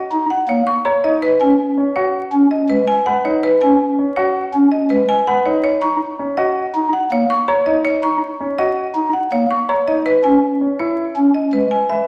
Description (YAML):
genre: classical, minimalist pattern music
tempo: 163 BPM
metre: 6/4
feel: straight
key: unclear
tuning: A4 = 445 Hz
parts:
  - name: pipe organ, stopped flute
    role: accompaniment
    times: 0.1-11.7 s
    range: G#3 to D#4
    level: -20 LUFS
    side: equal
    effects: none
  - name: marimba with hard mallets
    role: melody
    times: 0.3-12.1 s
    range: B4 to C#6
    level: -20 LUFS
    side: equal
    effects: none
  - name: warm grand piano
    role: arpeggios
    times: 0.9-12.1 s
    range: C#4 to C#5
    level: -22 LUFS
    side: equal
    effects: none
room: wet recital hall reverb, RT60 1.4 s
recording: vinyl crackle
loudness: -16 LUFS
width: mono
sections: 0.0-12.1 A section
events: none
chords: 0.0 F# (rootless); 1.2 B6; 5.6 F#5; 10.1 E